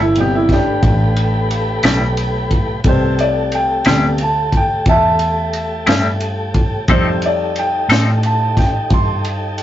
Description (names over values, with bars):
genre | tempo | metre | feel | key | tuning
slow blues | 59 BPM (dotted quarters) | 12/8 | straight | A minor | A4 = 440 Hz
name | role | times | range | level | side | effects
clean electric guitar | accompaniment | 0.0-8.1 s | A2 to A4 | -16 LUFS | left 2 dB | tremolo
clear grand piano | accompaniment | 0.0-9.6 s | C3 to C6 | -17 LUFS | equal | none
tonewheel organ | sustained chords | 0.0-9.6 s | A3 to B4 | -24 LUFS | equal | slow rotary speaker
vintage muted fingered electric bass | bass | 0.0-9.6 s | G1 to A2 | -19 LUFS | equal | none
crunchy breakbeat drum kit | drums | 0.2-9.6 s | kick drum, ride cymbal, snare drum | -18 LUFS | equal | none
room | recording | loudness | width
wet booth ambience, RT60 0.3 s | rough rehearsal-room recording, warm saturation, nothing above 7.6 kHz | -13 LUFS | side -12 dB against mid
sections
0.0-9.6 A section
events
grand piano solo 0.0-9.6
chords
0.0 Am7; 6.9 F7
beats
0.82 1.83 | 2.85 3.85 4.87 5.88 | 6.89 7.90 8.91